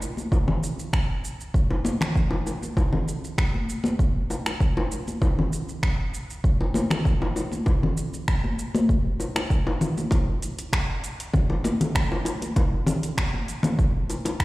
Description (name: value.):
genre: downtempo.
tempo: 98 BPM.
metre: 4/4.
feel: straight.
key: none.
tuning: none.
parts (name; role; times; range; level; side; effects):
deep house drum kit; drums; 0.0-14.4 s; finger snaps, hi-hat, shaker; -32 LUFS; right 1 dB; overdrive, studio reverb.
congas and bongos; percussion; 0.2-14.4 s; none; -26 LUFS; left 1 dB; none.
electronic kick drum; drums; 0.3-14.4 s; none; -23 LUFS; equal; overdrive, studio reverb.
room: moderate echo chamber reverb, RT60 2.3 s.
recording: played on a big sound system in a bare room, large studio reverb.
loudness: -22 LUFS.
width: side -19 dB against mid.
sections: 0.0-10.1 A section; 10.1-14.4 A section.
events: none.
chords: none.